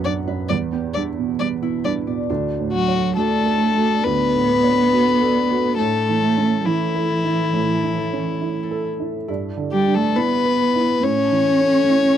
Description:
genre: neoclassical piano and strings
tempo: 69 BPM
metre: 4/4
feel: rubato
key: unclear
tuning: A4 = 440 Hz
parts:
  - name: warm violin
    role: melody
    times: 0.0-12.2 s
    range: E4 to D5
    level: -20 LUFS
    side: left 6 dB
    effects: none
  - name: dark cello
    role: second line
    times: 0.0-12.2 s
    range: E3 to C#4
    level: -20 LUFS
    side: right 3 dB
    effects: none
  - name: dark upright piano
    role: accompaniment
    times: 0.0-12.2 s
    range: B1 to C#5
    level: -24 LUFS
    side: right 7 dB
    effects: none
  - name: concert harp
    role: arpeggios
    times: 0.0-12.2 s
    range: D4 to B5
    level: -30 LUFS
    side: left 10 dB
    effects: tape echo
room: light reverb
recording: dry, close 1970s-style studio recording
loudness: -17 LUFS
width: side -10 dB against mid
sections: 0.0-2.3 A section; 2.3-12.2 B section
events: none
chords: 0.5 Em7; 2.3 Dmaj7; 5.8 A; 9.3 Em7/G; 11.0 A

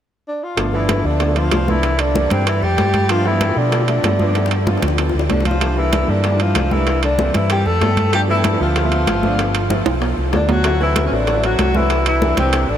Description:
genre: Afro-Cuban jazz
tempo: 191 BPM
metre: 4/4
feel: straight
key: G mixolydian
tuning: A4 = 440 Hz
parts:
  - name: mellow tenor saxophone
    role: melody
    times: 0.3-12.8 s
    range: C4 to A4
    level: -20 LUFS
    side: left 1 dB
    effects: tape echo
  - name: warm baby grand piano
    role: accompaniment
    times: 0.6-12.7 s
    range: E3 to F#4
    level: -23 LUFS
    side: equal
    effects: analog chorus
  - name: fingered electric bass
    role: bass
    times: 0.6-12.8 s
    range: G1 to B2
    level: -19 LUFS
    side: equal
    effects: none
  - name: bongos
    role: percussion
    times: 0.6-12.7 s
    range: none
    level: -27 LUFS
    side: left 7 dB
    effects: none
  - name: congas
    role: percussion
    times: 0.6-12.8 s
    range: none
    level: -25 LUFS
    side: left 1 dB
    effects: none
  - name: timbales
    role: percussion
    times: 0.6-12.7 s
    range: none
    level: -25 LUFS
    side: right 7 dB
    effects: none
  - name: warm baritone saxophone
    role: second line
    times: 0.7-12.8 s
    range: C3 to A3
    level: -24 LUFS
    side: right 2 dB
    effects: tape echo
room: moderate huge ambient reverb, RT60 7.4 s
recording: dreamy mix soaked in reverb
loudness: -14 LUFS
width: side -10 dB against mid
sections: 0.6-12.8 A section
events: drum fill 4.4-5.6, 9.7-10.6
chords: 0.0 N.C.; 0.6 G7; 1.8 C7; 3.1 G7; 5.6 C7; 8.1 G7; 10.6 D7; 11.9 C7

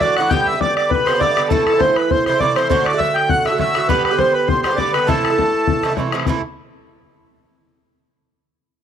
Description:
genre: celtic folk, Celtic reel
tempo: 202 BPM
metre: 4/4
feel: swing 54% on 8ths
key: A dorian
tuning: A4 = 441 Hz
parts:
  - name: accordion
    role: melody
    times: 0.0-5.9 s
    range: A4 to G5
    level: -18 LUFS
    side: right 2 dB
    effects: slapback echo
  - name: bright wooden whistle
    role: second line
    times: 0.0-5.9 s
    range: A5 to G6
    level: -27 LUFS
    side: left 7 dB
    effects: none
  - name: warm velvety synth lead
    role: second line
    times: 0.0-5.9 s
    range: A4 to G5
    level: -22 LUFS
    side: right 1 dB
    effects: none
  - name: Irish bouzouki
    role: accompaniment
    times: 0.0-6.4 s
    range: G2 to G4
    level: -21 LUFS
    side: right 5 dB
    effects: none
  - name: bodhran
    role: percussion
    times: 0.0-6.4 s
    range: none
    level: -22 LUFS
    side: left 6 dB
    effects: none
room: studio ambience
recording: dry, close 1970s-style studio recording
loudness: -14 LUFS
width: side -8 dB against mid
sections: 0.0-6.3 A section; 6.3-7.5 B section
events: none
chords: 0.3 G; 1.5 Am; 2.7 D/A; 3.9 G; 5.1 Am

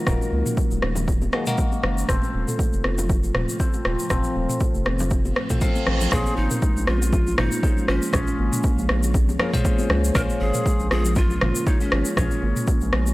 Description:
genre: afro house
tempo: 119 BPM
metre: 4/4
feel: swing 55% on 16ths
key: Bb minor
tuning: A4 = 443 Hz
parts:
  - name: ethereal airy pad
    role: sustained chords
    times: 0.0-13.1 s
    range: A2 to Bb4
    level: -35 LUFS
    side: equal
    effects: none
  - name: barky tine electric piano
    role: stabs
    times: 0.0-13.1 s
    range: Bb3 to F5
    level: -30 LUFS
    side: left 2 dB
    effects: phaser, sidechain pumping, tape echo
  - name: kalimba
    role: arpeggios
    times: 0.1-13.1 s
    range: F3 to Bb4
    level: -29 LUFS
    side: equal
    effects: sidechain pumping, tape echo
  - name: round analog bass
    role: bass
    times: 0.1-13.1 s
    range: Eb1 to Db2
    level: -24 LUFS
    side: equal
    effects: transformer saturation, sidechain pumping
  - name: deep house drum kit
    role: drums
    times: 0.1-13.0 s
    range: rim click, toms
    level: -26 LUFS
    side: equal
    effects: none
  - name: electronic kick drum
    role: drums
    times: 0.1-12.8 s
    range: none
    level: -22 LUFS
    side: equal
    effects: none
  - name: egg shaker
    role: percussion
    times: 0.1-13.1 s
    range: none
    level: -34 LUFS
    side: left 2 dB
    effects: none
  - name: congas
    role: percussion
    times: 0.2-13.1 s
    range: none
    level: -33 LUFS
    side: left 1 dB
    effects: none
  - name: reverse cymbal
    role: sound effects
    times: 5.4-6.1 s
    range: none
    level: -33 LUFS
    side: right 6 dB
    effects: none
  - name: breathy bright large pan pipes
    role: melody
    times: 6.1-12.6 s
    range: Db4 to Bb4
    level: -30 LUFS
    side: equal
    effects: tape echo
room: small room reverb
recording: dry, gritty hardware recording, transformer saturation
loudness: -19 LUFS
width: side -19 dB against mid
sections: 0.0-6.1 A section; 6.1-13.1 B section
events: reverse cymbal 5.4-6.1; band accent 5.9; drop 6.1-13.1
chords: 0.0 Ebm; 2.1 F; 6.1 Bbm7

